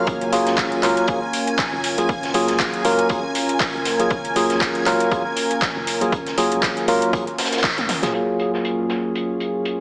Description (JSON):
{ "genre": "deep house", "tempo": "119 BPM", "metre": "4/4", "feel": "swing 56% on 16ths", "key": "F# major", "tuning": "A4 = 439 Hz", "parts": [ { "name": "warm analog pad", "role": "sustained chords", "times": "0.0-9.8 s", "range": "F#2 to A#4", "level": "-26 LUFS", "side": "equal", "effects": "chorus, sidechain pumping" }, { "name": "tine electric piano", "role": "stabs", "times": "0.0-9.8 s", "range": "F#3 to A#4", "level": "-20 LUFS", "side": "equal", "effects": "medium stereo tremolo, vintage 12-bit sampler grit, sidechain pumping, low-pass filter, tape echo" }, { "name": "rubbery square bass", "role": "bass", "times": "0.0-8.1 s", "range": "F#1 to C#2", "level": "-35 LUFS", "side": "equal", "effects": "sidechain pumping" }, { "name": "string machine, violins", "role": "texture", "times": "0.0-8.2 s", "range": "G#5 to G#6", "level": "-29 LUFS", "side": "equal", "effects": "ensemble chorus" }, { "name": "crunchy breakbeat drum kit", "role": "drums", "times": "0.1-9.8 s", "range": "hi-hat, snare drum", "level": "-30 LUFS", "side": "equal", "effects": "high-pass filter on hats, low-pass filter on hats, studio reverb, high-pass filter on snare, low-pass filter on snare, high-pass filter on room, low-pass filter on room" }, { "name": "electronic kick drum", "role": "drums", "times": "0.1-7.7 s", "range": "none", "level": "-26 LUFS", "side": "equal", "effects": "studio reverb" }, { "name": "deep house drum kit", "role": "drums", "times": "0.2-8.1 s", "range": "handclaps, hi-hat, toms", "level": "-24 LUFS", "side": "equal", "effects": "overdrive, studio reverb" } ], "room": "moderate echo chamber reverb, RT60 1.4 s, digital ambience", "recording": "heavily compressed radio sound, vinyl crackle, small speaker sound", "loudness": "-18 LUFS", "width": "side -35 dB against mid", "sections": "0.0-8.1 A section; 8.1-9.8 B section", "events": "band accent 7.6; drum fill 7.8-8.1; filter sweep on tine electric piano 8.1-9.8", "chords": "0.0 F#maj9" }